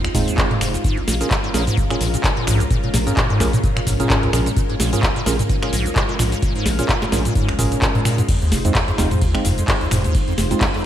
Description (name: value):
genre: acid house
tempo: 129 BPM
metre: 4/4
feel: swing 56% on 16ths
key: unclear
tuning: A4 = 440 Hz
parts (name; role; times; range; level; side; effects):
- string machine, full ensemble; sustained chords; 0.0-10.9 s; Ab3 to C5; -27 LUFS; equal; ensemble chorus, sidechain pumping
- liquid acid bass; riff; 0.0-10.8 s; F1 to F3; -22 LUFS; equal; phaser, analog chorus, sidechain pumping, ping-pong delay
- booming analog drum machine; drums; 0.0-10.8 s; crash cymbal, finger snaps, handclaps, hi-hat, ride cymbal, shaker, snare drum, toms; -22 LUFS; equal; gated reverb
- percussive organ stab; stabs; 0.1-10.6 s; Ab3 to Bb4; -26 LUFS; right 2 dB; chorus, ping-pong delay
- round analog bass; bass; 0.1-10.5 s; F1 to Bb2; -23 LUFS; equal; sidechain pumping
- electronic kick drum; drums; 0.1-10.7 s; none; -21 LUFS; equal; none
room: light reverb, digital ambience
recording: bright 1980s-style digital production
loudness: -16 LUFS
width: side -11 dB against mid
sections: 0.0-10.9 A section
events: none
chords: 0.0 Fm7; 0.8 Bbm7; 8.3 Fm7